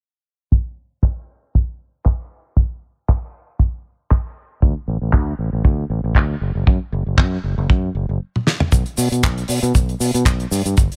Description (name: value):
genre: nu-disco, nu disco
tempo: 117 BPM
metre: 4/4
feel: swing 55% on 16ths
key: unclear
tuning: A4 = 440 Hz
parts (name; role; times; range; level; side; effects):
- kick drum; drums; 0.5-10.9 s; none; -17 LUFS; equal; studio ambience
- damped 70s drum kit; drums; 1.0-11.0 s; handclaps, hi-hat, shaker, snare drum, toms; -24 LUFS; equal; studio ambience
- overdriven fingered electric bass; bass; 4.6-10.9 s; F#1 to B2; -22 LUFS; equal; tube saturation
room: little or no reverb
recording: low-pass filter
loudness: -19 LUFS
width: mono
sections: 0.5-8.7 A section; 8.7-11.0 B section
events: filter sweep 0.5-8.7; drum fill 8.3-8.7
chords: none